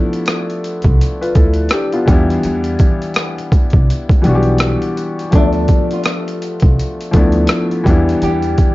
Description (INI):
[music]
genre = lo-fi hip hop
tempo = 83 BPM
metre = 4/4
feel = swing 58% on 16ths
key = D dorian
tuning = A4 = 440 Hz
[part]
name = felt-muted upright piano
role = accompaniment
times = 0.0-8.7 s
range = E3 to E5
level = -17 LUFS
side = left 1 dB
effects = plate reverb
[part]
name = boom bap sampler-style drum kit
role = drums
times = 0.1-8.7 s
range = hi-hat, kick drum, rim click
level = -14 LUFS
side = equal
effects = overdrive
[part]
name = upright bass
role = bass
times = 0.8-8.5 s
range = B1 to E2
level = -17 LUFS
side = equal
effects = none
[part]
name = nylon-string guitar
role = melody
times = 5.4-8.7 s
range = D4 to G4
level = -22 LUFS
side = left 2 dB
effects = analog delay
[sound]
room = light reverb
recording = cassette tape, nothing above 7.5 kHz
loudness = -12 LUFS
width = side -19 dB against mid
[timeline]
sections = 0.0-8.7 A section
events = none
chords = 0.0 Dm69; 2.1 Em7; 5.3 Dm69; 7.9 Em7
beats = 0.27 1.00 1.72 | 2.44 3.17 3.89 4.61 | 5.33 6.06 6.78 7.50 | 8.22